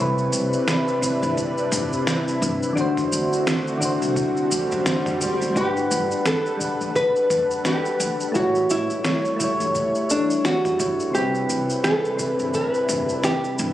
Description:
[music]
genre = sunset chillout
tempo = 86 BPM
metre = 4/4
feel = swing 58% on 16ths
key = unclear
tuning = A4 = 441 Hz
[part]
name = soft electric-piano-like synth keys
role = accompaniment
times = 0.0-13.7 s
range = C3 to F#5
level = -24 LUFS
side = left 1 dB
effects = chorus, auto-pan, vintage 12-bit sampler grit, tape echo, shimmer reverb
[part]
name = lush unison pad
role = sustained chords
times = 0.1-13.7 s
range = C3 to F#5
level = -29 LUFS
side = equal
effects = chorus, phaser, shimmer reverb
[part]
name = upright bass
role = bass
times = 0.0-13.7 s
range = G1 to F#2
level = -30 LUFS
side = equal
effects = tube saturation
[part]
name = dusty soul sampler-style drum kit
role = drums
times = 0.2-13.7 s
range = shaker, snare drum, toms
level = -27 LUFS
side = equal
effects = overdrive, studio reverb
[part]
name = electronic kick drum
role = drums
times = 1.0-12.7 s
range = none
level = -34 LUFS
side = equal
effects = overdrive, studio reverb
[part]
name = swell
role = sound effects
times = 4.4-5.6 s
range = none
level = -30 LUFS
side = equal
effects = none
[part]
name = nylon-string guitar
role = melody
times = 5.6-13.7 s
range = D4 to B4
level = -23 LUFS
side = equal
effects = digital delay, shimmer reverb
[sound]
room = moderate lush hall reverb, RT60 2.2 s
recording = recorded on a phone in the room, club reverb, compression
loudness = -20 LUFS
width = side -13 dB against mid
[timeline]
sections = 0.0-13.7 A section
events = swell 4.4-5.6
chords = 0.0 Cmaj7; 2.8 D7; 5.6 Gmaj7; 8.4 A7; 11.1 Cmaj7

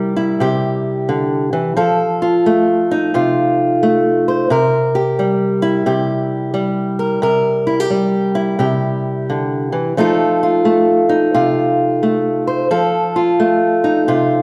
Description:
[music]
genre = blues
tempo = 88 BPM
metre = 4/4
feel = swing 64% on 8ths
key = C mixolydian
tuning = A4 = 439 Hz
[part]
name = fingerpicked old ladder-braced acoustic guitar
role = solo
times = 0.0-14.4 s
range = C3 to C5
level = -16 LUFS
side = equal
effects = none
[sound]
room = wet recital hall reverb, RT60 1.4 s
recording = recorded in a church or concert hall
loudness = -16 LUFS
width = mono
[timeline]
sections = 0.0-14.4 A section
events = none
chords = 0.0 C7; 1.8 F7; 4.5 C7; 10.0 F7

